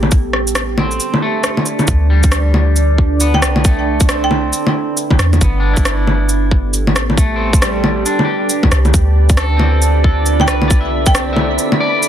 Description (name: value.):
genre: future garage.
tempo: 136 BPM.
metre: 4/4.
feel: swing 62% on 16ths.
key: unclear.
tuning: A4 = 438 Hz.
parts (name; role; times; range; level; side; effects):
deep dark ambient pad; sustained chords; 0.0-12.1 s; B3 to D5; -20 LUFS; right 3 dB; chorus, built-in reverb, sidechain pumping.
soft 808-style bass; bass; 0.0-11.6 s; G1 to E2; -15 LUFS; equal; sidechain pumping.
electronic bongos, shaker and rim click; drums; 0.0-12.1 s; none; -17 LUFS; left 1 dB; overdrive.
electronic kick drum; drums; 0.1-11.1 s; none; -12 LUFS; equal; overdrive.
electric guitar at the edge of break-up; accompaniment; 0.8-12.1 s; G3 to E5; -21 LUFS; left 1 dB; vintage 12-bit sampler grit, sidechain pumping, tape echo.
marimba with hard mallets; melody; 3.3-4.5, 10.4-11.4 s; G5; -23 LUFS; right 2 dB; tape echo.
wind-like tuned noise texture; texture; 10.0-12.1 s; B3 to B5; -27 LUFS; left 1 dB; built-in reverb.
room: light reverb.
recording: dense, heavily limited modern master.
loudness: -11 LUFS.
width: side -10 dB against mid.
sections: 0.0-1.9 A section; 1.9-12.1 B section.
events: none.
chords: 0.1 Am11; 1.9 Dm7; 3.6 Cmaj9; 5.4 Gadd9; 7.2 Am11; 8.9 Dm7; 10.7 Cmaj9.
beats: | 0.12 0.56 1.00 1.44 | 1.88 2.33 2.77 3.21 | 3.65 4.09 4.53 4.97 | 5.41 5.85 6.30 6.74 | 7.18 7.62 8.06 8.50 | 8.94 9.38 9.82 10.27 | 10.71 11.15 11.59 12.03.